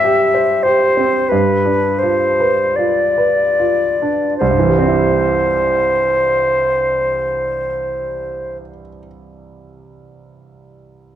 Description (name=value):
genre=classical, romantic duo for flute and grand piano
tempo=35-49 BPM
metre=4/4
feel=rubato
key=C major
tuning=A4 = 440 Hz
part: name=concert flute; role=melody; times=0.0-8.6 s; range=B4 to E5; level=-15 LUFS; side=left 2 dB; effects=none
part: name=warm concert grand piano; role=accompaniment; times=0.0-11.2 s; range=C2 to C5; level=-18 LUFS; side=right 4 dB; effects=none
room=moderate recital hall reverb, RT60 1.4 s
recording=dark, warm production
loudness=-13 LUFS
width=side -10 dB against mid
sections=0.0-4.4 A section; 4.4-10.6 B section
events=slowing down 0.0-4.4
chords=0.0 C/G; 1.3 G7; 4.4 C